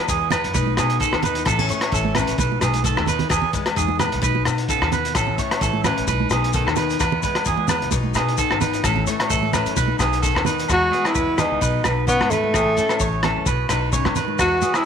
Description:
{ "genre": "highlife guitar band", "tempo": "130 BPM", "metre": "4/4", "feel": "swing 55% on 16ths", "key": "unclear", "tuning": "A4 = 437 Hz", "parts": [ { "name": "picked steel-string acoustic guitar", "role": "accompaniment", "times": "0.0-14.9 s", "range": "E2 to D#4", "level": "-27 LUFS", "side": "left 12 dB", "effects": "none" }, { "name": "electric guitar at the edge of break-up", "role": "arpeggios", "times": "0.0-14.8 s", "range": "F#4 to C#5", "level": "-24 LUFS", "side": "right 11 dB", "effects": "tape echo" }, { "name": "upright bass", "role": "bass", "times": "0.1-14.6 s", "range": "G#1 to B2", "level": "-25 LUFS", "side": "left 1 dB", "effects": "none" }, { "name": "crunchy breakbeat drum kit", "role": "drums", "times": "0.1-14.8 s", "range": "hi-hat, kick drum, rim click", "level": "-25 LUFS", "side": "left 1 dB", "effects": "none" }, { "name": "shekere", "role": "percussion", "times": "0.1-14.8 s", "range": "none", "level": "-30 LUFS", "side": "left 8 dB", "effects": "none" }, { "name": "agogo bells", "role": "percussion", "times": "0.3-14.9 s", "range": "none", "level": "-29 LUFS", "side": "left 11 dB", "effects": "none" }, { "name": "congas", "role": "percussion", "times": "0.3-14.7 s", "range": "none", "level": "-28 LUFS", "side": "right 9 dB", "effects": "none" }, { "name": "breathy tenor saxophone", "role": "melody", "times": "10.7-14.9 s", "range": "A3 to F#4", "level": "-20 LUFS", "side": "left 1 dB", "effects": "none" } ], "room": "light reverb, small room ambience", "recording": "1960s-style stereo with parts hard left and right", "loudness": "-18 LUFS", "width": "side -7 dB against mid", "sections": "0.0-10.7 A section; 10.7-14.9 B section", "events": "drum fill 2.7-3.3", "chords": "0.0 Eadd9; 0.5 B; 1.5 A; 2.4 B; 3.3 E; 4.2 B; 5.2 A; 6.1 B; 7.0 E; 7.9 B; 8.8 A; 9.8 B; 10.7 Eadd9; 11.6 B; 12.5 A; 13.5 B" }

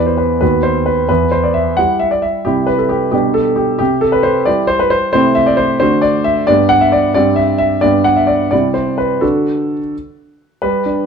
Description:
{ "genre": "classical-period piano sonatina", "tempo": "88 BPM (dotted quarters)", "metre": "6/8", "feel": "straight", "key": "unclear", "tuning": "A4 = 440 Hz", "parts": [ { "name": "warm concert grand piano", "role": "solo", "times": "0.0-11.1 s", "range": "D#2 to F#5", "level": "-11 LUFS", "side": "equal", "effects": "none" } ], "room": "moderate stone room reverb, RT60 1.4 s", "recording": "dark, warm production", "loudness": "-11 LUFS", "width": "side -6 dB against mid", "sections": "0.0-10.6 A section", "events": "none", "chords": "0.4 B/D#; 1.1 Em; 2.5 C; 3.1 G/B; 3.8 C; 5.1 Am7/C; 5.8 D; 6.5 G; 7.2 C5/G; 7.8 G; 8.5 C; 9.2 D" }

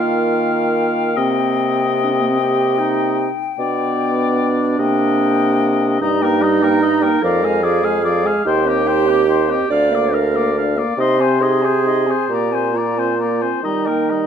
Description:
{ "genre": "classical, slow romantic movement for wind quintet", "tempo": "43-51 BPM (dotted quarters)", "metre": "6/8", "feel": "rubato", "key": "Eb major", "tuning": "A4 = 440 Hz", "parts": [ { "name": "concert flute", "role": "melody", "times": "0.0-14.3 s", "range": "D5 to C6", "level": "-23 LUFS", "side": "left 13 dB", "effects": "none" }, { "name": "warm oboe", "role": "second line", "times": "0.0-14.3 s", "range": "G4 to F5", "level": "-23 LUFS", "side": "left 5 dB", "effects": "none" }, { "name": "clear French horn", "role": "accompaniment", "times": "0.0-14.3 s", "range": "F3 to Eb4", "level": "-24 LUFS", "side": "left 2 dB", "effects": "none" }, { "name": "mellow clarinet", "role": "accompaniment", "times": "0.0-14.3 s", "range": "Bb3 to D5", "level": "-20 LUFS", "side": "right 7 dB", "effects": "none" }, { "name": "mellow bassoon", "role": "bass", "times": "0.0-14.3 s", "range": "D2 to Eb3", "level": "-19 LUFS", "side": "right 1 dB", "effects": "none" } ], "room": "moderate recital hall reverb, RT60 1.6 s", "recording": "none", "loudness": "-14 LUFS", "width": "side -8 dB against mid", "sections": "0.0-14.3 A section", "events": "none", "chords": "0.0 Eb; 1.2 Cm7; 3.6 G/B; 4.8 Cm7; 6.0 Eb/G; 7.2 Ddim/F; 8.5 Cm/Eb; 9.7 Bb/D; 11.0 Ab/C; 12.3 Bb9; 13.6 Eb" }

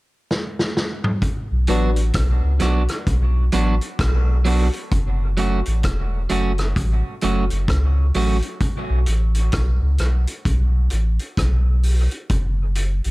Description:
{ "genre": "dub reggae", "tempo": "65 BPM", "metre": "4/4", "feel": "swing 62% on 16ths", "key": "B minor", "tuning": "A4 = 440 Hz", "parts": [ { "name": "vintage drum kit", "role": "drums", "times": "0.3-13.1 s", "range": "hi-hat, kick drum, rim click, snare drum, toms", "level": "-24 LUFS", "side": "equal", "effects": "none" }, { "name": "warm sub bass", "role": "bass", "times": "1.5-13.1 s", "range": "E1 to C#2", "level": "-18 LUFS", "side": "equal", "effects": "none" }, { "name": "electric guitar at the edge of break-up", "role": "accompaniment", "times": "1.7-8.4 s", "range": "F#3 to F#4", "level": "-25 LUFS", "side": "right 3 dB", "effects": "dub echo" }, { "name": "dark upright piano", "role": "stabs", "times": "1.7-1.9 s", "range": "D4 to D5", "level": "-29 LUFS", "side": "left 4 dB", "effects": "dub echo" } ], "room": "little or no reverb", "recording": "echo-heavy mix", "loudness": "-18 LUFS", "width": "side -21 dB against mid", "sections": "0.0-1.2 A section; 1.2-13.1 B section", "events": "drum fill 0.3-1.2", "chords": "0.0 N.C.; 1.2 Bm; 4.9 F#m; 8.6 Asus2; 12.3 N.C." }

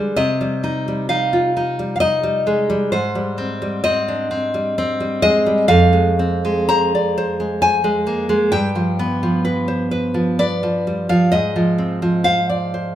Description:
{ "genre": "romantic piece for solo classical guitar", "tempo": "65 BPM", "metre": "3/4", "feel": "rubato", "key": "C minor", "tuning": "A4 = 441 Hz", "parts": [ { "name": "nylon-string guitar", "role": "solo", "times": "0.0-12.9 s", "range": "F2 to Bb5", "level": "-16 LUFS", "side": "equal", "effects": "none" } ], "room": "moderate recital hall reverb, RT60 1.2 s", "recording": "minimal, uncompressed stereo recording", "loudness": "-16 LUFS", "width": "side -11 dB against mid", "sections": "0.0-12.9 A section", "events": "none", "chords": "0.2 Cm; 2.9 Abmaj7; 5.7 Fm; 8.5 G7; 11.3 Ab6" }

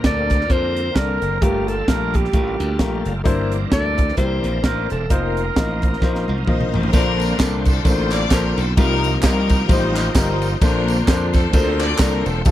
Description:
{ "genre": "uptempo gospel", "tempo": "130 BPM", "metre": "4/4", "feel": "swing 57% on 8ths", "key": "Bb major", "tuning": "A4 = 440 Hz", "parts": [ { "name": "warm baby grand piano", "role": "accompaniment", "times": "0.0-12.5 s", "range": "G2 to Eb5", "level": "-24 LUFS", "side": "left 4 dB", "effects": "none" }, { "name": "bright tonewheel organ", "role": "sustained chords", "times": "0.0-12.5 s", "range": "D3 to C5", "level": "-28 LUFS", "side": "right 2 dB", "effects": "slow rotary speaker, overdrive, chorus vibrato" }, { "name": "glassy slap bass", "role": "bass", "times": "0.0-12.5 s", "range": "E1 to F2", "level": "-22 LUFS", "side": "equal", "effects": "none" }, { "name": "crisp fusion drum kit", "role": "drums", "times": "0.0-12.5 s", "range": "crash cymbal, hi-hat, kick drum, ride cymbal, snare drum, toms", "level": "-18 LUFS", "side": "equal", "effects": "none" }, { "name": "breathy alto saxophone", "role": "melody", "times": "0.1-6.5 s", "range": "G4 to D5", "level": "-24 LUFS", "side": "equal", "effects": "none" }, { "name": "clear chamber string section", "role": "melody", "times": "6.5-12.5 s", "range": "D4 to D5", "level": "-24 LUFS", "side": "left 3 dB", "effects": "none" }, { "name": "tambourine and handclaps", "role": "percussion", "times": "6.9-12.5 s", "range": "none", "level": "-31 LUFS", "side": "right 4 dB", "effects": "none" } ], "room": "studio ambience", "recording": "dry, close 1970s-style studio recording", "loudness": "-16 LUFS", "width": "side -13 dB against mid", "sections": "0.0-6.9 A section; 6.9-12.5 B section", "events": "drum fill 6.0-6.9", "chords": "0.0 Bbmaj9; 1.4 Gm9; 3.3 C9/G; 5.1 F7sus4; 6.9 Bbmaj9; 8.8 F9sus4/C; 10.6 Bbmaj9" }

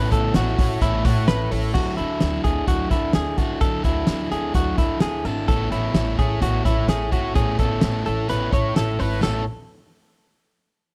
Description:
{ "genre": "jangly indie pop", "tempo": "128 BPM", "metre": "4/4", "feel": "straight", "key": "A major", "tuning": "A4 = 440 Hz", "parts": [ { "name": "crunchy overdriven guitar", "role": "accompaniment", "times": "0.0-9.4 s", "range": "D3 to C#5", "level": "-29 LUFS", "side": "equal", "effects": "none" }, { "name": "direct-recorded clean electric guitar", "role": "arpeggios", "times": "0.0-9.4 s", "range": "E4 to C#5", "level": "-28 LUFS", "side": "equal", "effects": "slapback echo" }, { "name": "upright bass", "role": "bass", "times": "0.0-9.5 s", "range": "G#1 to A2", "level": "-28 LUFS", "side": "equal", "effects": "none" }, { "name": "loose indie drum kit", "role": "drums", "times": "0.1-9.3 s", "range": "crash cymbal, hi-hat, kick drum, snare drum, splash cymbal", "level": "-25 LUFS", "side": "equal", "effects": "none" } ], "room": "small room reverb", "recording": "none", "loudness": "-22 LUFS", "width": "mono", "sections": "0.0-1.8 A section; 1.8-9.2 B section; 9.2-10.9 C section", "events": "none", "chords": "0.0 Aadd9; 1.8 Dadd9; 5.5 Aadd9; 9.2 N.C." }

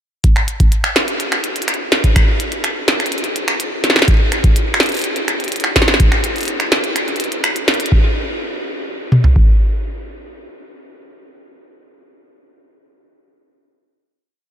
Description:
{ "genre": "IDM", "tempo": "125 BPM", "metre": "4/4", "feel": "straight", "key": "none", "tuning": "none", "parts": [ { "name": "booming analog drum machine", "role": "drums", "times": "0.2-9.5 s", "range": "kick drum, toms", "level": "-12 LUFS", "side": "equal", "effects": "none" }, { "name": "glitchy drum kit", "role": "drums", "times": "0.2-7.9 s", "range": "finger snaps, hi-hat, snare drum", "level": "-16 LUFS", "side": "equal", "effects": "tape echo" } ], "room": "moderate huge ambient reverb, RT60 8.1 s", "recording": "dreamy mix soaked in reverb", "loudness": "-13 LUFS", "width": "side -9 dB against mid", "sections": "0.2-7.9 groove; 7.9-11.8 final hit", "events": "none", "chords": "none" }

